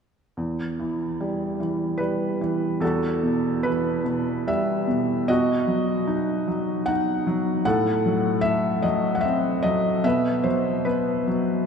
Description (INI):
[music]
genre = classical, lyrical solo piano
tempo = 74 BPM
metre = 3/4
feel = rubato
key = E harmonic minor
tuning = A4 = 441 Hz
[part]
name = felt-muted upright piano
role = solo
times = 0.4-11.7 s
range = E2 to F#5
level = -21 LUFS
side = equal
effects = none
[sound]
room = wet cathedral reverb, RT60 7.0 s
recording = recorded in a church or concert hall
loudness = -21 LUFS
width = side -6 dB against mid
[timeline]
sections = 0.4-2.8 A section; 2.8-11.7 B section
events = none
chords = 0.4 Em; 2.8 Emadd9; 5.3 B; 7.7 F#dim/A; 10.0 B5